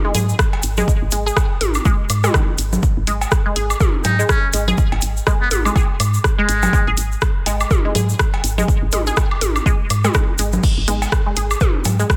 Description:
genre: minimal techno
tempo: 123 BPM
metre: 4/4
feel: swing 58% on 16ths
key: G# minor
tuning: A4 = 439 Hz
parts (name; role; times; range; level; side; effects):
- resonant blip pluck; riff; 0.0-12.0 s; D#3 to G#4; -27 LUFS; equal; phaser, analog chorus, sidechain pumping, delay
- woody FM bass; bass; 0.1-12.0 s; G#1 to G#2; -22 LUFS; equal; tube saturation, sidechain pumping
- minimal click drum kit; drums; 0.1-12.2 s; crash cymbal, hi-hat, rim click; -26 LUFS; equal; studio reverb, soft clipping on snare
- electronic congas, cowbell, toms and woodblock; percussion; 0.1-12.0 s; none; -26 LUFS; equal; overdrive, studio reverb, delay
- tube shaker; percussion; 0.1-12.2 s; none; -31 LUFS; equal; none
- electronic kick drum; drums; 0.4-12.2 s; none; -20 LUFS; equal; studio reverb
- trumpet with metal mute; melody; 4.0-6.9 s; G#3 to D#4; -24 LUFS; equal; delay
- filtered dub chord stab; stabs; 10.9-11.0 s; B3 to G#4; -34 LUFS; equal; phaser, delay
room: digital ambience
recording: dense, heavily limited modern master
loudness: -17 LUFS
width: mono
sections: 0.0-12.2 A section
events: none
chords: none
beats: 0.39 | 0.88 1.37 1.85 2.34 | 2.83 3.32 3.81 4.29 | 4.78 5.27 5.76 6.24 | 6.73 7.22 7.71 8.20 | 8.68 9.17 9.66 10.15 | 10.63 11.12 11.61 12.10

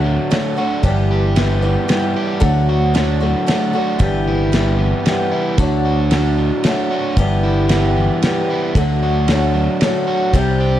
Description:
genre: folk rock and heartland rock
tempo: 114 BPM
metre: 3/4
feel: straight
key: D mixolydian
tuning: A4 = 440 Hz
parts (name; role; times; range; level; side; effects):
- picked twelve-string acoustic guitar; accompaniment; 0.0-10.8 s; G2 to G4; -19 LUFS; left 2 dB; none
- crunchy overdriven guitar; riff; 0.0-10.8 s; G2 to G4; -21 LUFS; right 2 dB; none
- fingered electric bass; bass; 0.0-10.8 s; G1 to D2; -17 LUFS; equal; none
- damped 70s drum kit; drums; 0.3-10.5 s; kick drum, ride cymbal, snare drum; -21 LUFS; equal; none
room: light reverb, small room ambience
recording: dark, warm production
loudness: -14 LUFS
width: side -12 dB against mid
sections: 0.0-10.8 A section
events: none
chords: 0.0 D; 0.8 G6; 2.4 D; 4.0 G6; 5.6 D; 7.2 G6; 8.8 D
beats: 0.31 | 0.84 1.36 1.89 | 2.42 2.95 3.47 | 4.00 4.53 5.06 | 5.58 6.11 6.64 | 7.17 7.69 8.22 | 8.75 9.28 9.81 | 10.34

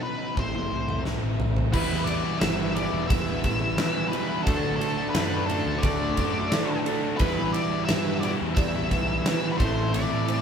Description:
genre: classic rock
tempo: 88 BPM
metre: 4/4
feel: straight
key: E minor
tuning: A4 = 440 Hz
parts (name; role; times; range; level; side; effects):
- octave-fuzz lead guitar; melody; 0.0-10.4 s; A4 to E5; -31 LUFS; left 3 dB; distortion
- crunchy overdriven guitar; riff; 0.0-10.4 s; A2 to E4; -33 LUFS; right 8 dB; none
- overdriven electric guitar; riff; 0.0-10.4 s; A2 to E4; -31 LUFS; left 6 dB; none
- fuzz picked electric bass; bass; 0.4-10.4 s; E1 to E3; -31 LUFS; equal; overdrive
- huge arena drum kit; drums; 0.4-10.4 s; crash cymbal, kick drum, ride cymbal, snare drum, toms; -28 LUFS; equal; none
- dark upright piano; accompaniment; 1.7-10.4 s; D4 to D5; -35 LUFS; right 7 dB; none
- cranked stack guitar; riff; 1.7-10.4 s; E2 to D4; -33 LUFS; equal; overdrive
room: wet large studio reverb, RT60 0.9 s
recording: band playing live in one room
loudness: -23 LUFS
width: side -7 dB against mid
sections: 0.0-1.7 A section; 1.7-10.4 B section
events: drum fill 0.4-1.7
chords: 0.4 Am; 1.7 Em; 4.5 D; 7.2 Em; 9.6 Am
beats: 0.37 1.05 | 1.74 2.42 3.10 3.79 | 4.47 5.15 5.83 6.52 | 7.20 7.88 8.57 9.25 | 9.94

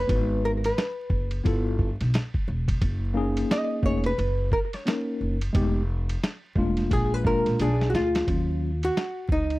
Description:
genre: hip hop, jazz-hop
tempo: 88 BPM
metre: 4/4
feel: swing 61% on 16ths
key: Eb minor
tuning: A4 = 440 Hz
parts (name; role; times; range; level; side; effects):
- archtop guitar, miked and amplified; melody; 0.0-9.6 s; D4 to Eb5; -27 LUFS; equal; slapback echo
- upright bass; bass; 0.0-9.6 s; E1 to Eb2; -27 LUFS; equal; none
- mellow tine electric piano; accompaniment; 0.1-8.7 s; Gb3 to Cb5; -27 LUFS; left 1 dB; medium stereo tremolo
- lo-fi sampler-style drum kit; drums; 0.1-9.6 s; hi-hat, kick drum, ride cymbal, snare drum; -27 LUFS; equal; none
room: little or no reverb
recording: dry, close 1970s-style studio recording, vinyl crackle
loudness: -23 LUFS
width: side -19 dB against mid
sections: 0.0-8.3 A section; 8.3-9.6 B section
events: hollow-body jazz guitar solo 0.0-8.3; drum fill 7.6-8.3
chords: 0.1 Abm7; 1.5 G13; 2.8 Gb6; 5.5 Fm7b5; 6.9 Bb7; 8.3 Ebm9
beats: | 0.09 0.78 1.46 2.14 | 2.82 3.50 4.18 4.87 | 5.55 6.23 6.91 7.59 | 8.28 8.96

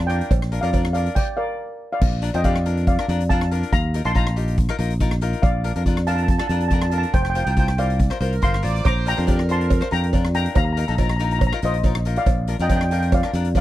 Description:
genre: calypso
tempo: 140 BPM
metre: 4/4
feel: straight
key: Bb major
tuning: A4 = 440 Hz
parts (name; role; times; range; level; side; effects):
- steel pan; melody; 0.0-13.6 s; Bb4 to D6; -25 LUFS; equal; none
- fingered electric bass; bass; 0.0-13.6 s; F1 to F2; -21 LUFS; equal; none
- street-band drum kit; drums; 0.0-13.6 s; crash cymbal, hi-hat, kick drum, rim click; -22 LUFS; equal; none
- cavaquinho; accompaniment; 0.1-13.6 s; D4 to C5; -29 LUFS; left 7 dB; none
- cowbell; percussion; 0.3-0.8, 8.8-13.6 s; none; -30 LUFS; right 20 dB; none
- clear horn section; second line; 8.2-10.1 s; Bb4 to D5; -29 LUFS; right 6 dB; none
room: little or no reverb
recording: dry, close 1970s-style studio recording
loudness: -18 LUFS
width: side -14 dB against mid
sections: 0.0-2.0 A section; 2.0-13.6 A section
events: stop 1.2-2.0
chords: 0.0 Bb; 3.7 Ebsus2; 5.4 Bb; 7.1 Fsus4; 8.8 Bb; 10.6 Ebsus2; 12.3 Bb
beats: | 0.31 0.73 1.16 1.59 | 2.01 2.44 2.87 3.29 | 3.72 4.15 4.58 5.00 | 5.43 5.86 6.29 6.71 | 7.14 7.57 7.99 8.42 | 8.85 9.28 9.70 10.13 | 10.56 10.98 11.41 11.84 | 12.27 12.69 13.12 13.55

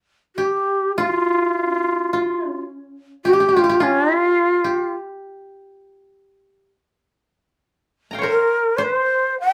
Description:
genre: japanese traditional, Japanese chamber music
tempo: 53 BPM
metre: 4/4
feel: rubato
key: unclear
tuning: A4 = 440 Hz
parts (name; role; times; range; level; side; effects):
- breathy shakuhachi; melody; 0.4-9.5 s; F4 to G5; -19 LUFS; equal; none
- koto; second line; 0.4-9.5 s; F4 to Bb5; -28 LUFS; equal; none
room: moderate small room reverb, RT60 0.6 s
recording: heard from further back in the room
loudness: -19 LUFS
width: mono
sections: 1.0-9.5 A section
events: none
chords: none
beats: | 0.96 2.12 3.25 4.37 | 5.48 6.62 7.73 8.83

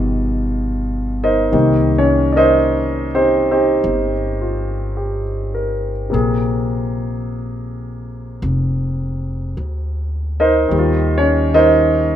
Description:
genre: jazz ballad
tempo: 52 BPM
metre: 4/4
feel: swing 68% on 8ths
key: unclear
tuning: A4 = 445 Hz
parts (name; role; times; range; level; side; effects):
- warm concert grand piano; accompaniment; 0.0-12.2 s; B2 to F5; -16 LUFS; equal; none
- upright bass; bass; 0.0-12.2 s; F1 to Eb2; -20 LUFS; equal; none
room: light reverb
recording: minimal, uncompressed stereo recording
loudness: -15 LUFS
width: side -10 dB against mid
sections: 0.0-12.2 A section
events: none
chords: 0.0 G7alt; 1.5 Cm7; 6.1 Bb9; 10.7 Eb69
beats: 0.38 | 1.53 2.69 3.84 4.99 | 6.13 7.28 8.43 9.58 | 10.72 11.87

